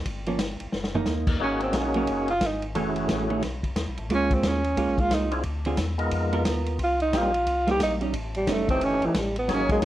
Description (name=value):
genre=soul jazz organ trio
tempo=178 BPM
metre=4/4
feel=swing 62% on 8ths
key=unclear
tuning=A4 = 440 Hz
part: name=tonewheel organ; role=bass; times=0.0-9.8 s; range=Gb1 to F2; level=-31 LUFS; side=left 1 dB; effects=slow rotary speaker
part: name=vintage drum kit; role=drums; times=0.1-9.8 s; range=crash cymbal, hi-hat, kick drum, ride cymbal, snare drum, toms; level=-30 LUFS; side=left 1 dB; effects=none
part: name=vintage hollow-body jazz guitar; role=accompaniment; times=0.3-9.8 s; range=D3 to Bb4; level=-28 LUFS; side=right 3 dB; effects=none
part: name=breathy tenor saxophone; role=melody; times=1.4-9.8 s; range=E3 to G4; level=-25 LUFS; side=right 1 dB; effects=none
part: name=percussive tonewheel organ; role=melody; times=1.4-9.8 s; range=E3 to Bb4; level=-29 LUFS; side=left 2 dB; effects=slow rotary speaker
room=light reverb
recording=worn, warbling old tape, cassette tape, warbly pitch drift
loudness=-23 LUFS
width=side -13 dB against mid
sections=0.0-1.4 A section; 1.4-9.8 B section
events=drum fill 0.7-1.1; tenor saxophone solo 1.4-9.8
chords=0.1 Gm7b5; 0.7 Gb6; 1.4 Ab9sus4; 2.7 Gbm7; 3.4 B7; 4.1 Db6; 5.4 Dm7b5; 6.1 Abm69; 6.8 Cm7; 8.1 A7#11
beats=| 0.06 0.39 0.73 1.06 | 1.40 1.74 2.08 2.41 | 2.75 3.09 3.42 3.76 | 4.10 4.43 4.77 5.11 | 5.44 5.78 6.12 6.46 | 6.79 7.13 7.46 7.80 | 8.14 8.47 8.81 9.15 | 9.48 9.82